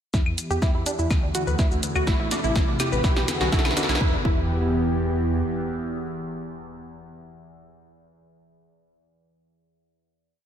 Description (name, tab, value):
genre	melodic techno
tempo	124 BPM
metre	4/4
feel	straight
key	E minor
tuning	A4 = 441 Hz
part	warm analog pad	sustained chords	0.1-7.1 s	C3 to G4	-29 LUFS	equal	chorus, sidechain pumping
part	tight sequenced synth	arpeggios	0.1-4.4 s	D4 to B4	-28 LUFS	right 1 dB	chorus, sidechain pumping, analog delay
part	dark detuned saw bass	bass	0.1-5.4 s	A1 to E2	-27 LUFS	equal	sidechain pumping
part	overtone-sweeping drone	drone	1.0-7.1 s	E2	-37 LUFS	right 1 dB	chorus, built-in reverb, sidechain pumping
part	electronic kick drum	drums	0.1-4.4 s	none	-22 LUFS	equal	overdrive
part	techno drum kit	drums	0.1-4.0 s	claves, hi-hat, shaker, snare drum	-28 LUFS	equal	none
part	riser and impact	sound effects	1.3-7.2 s	none	-35 LUFS	equal	none
room	moderate lush hall reverb, RT60 2.0 s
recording	dreamy mix soaked in reverb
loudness	-21 LUFS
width	side -9 dB against mid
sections	0.1-4.0 build; 4.0-7.9 final chord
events	build-up 0.1-4.0; drum fill 0.1-4.0; filter sweep on analog synth pad 0.1-4.0; riser 1.3-4.0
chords	0.1 Em; 1.1 D; 2.1 Am; 3.0 Bm; 4.0 Em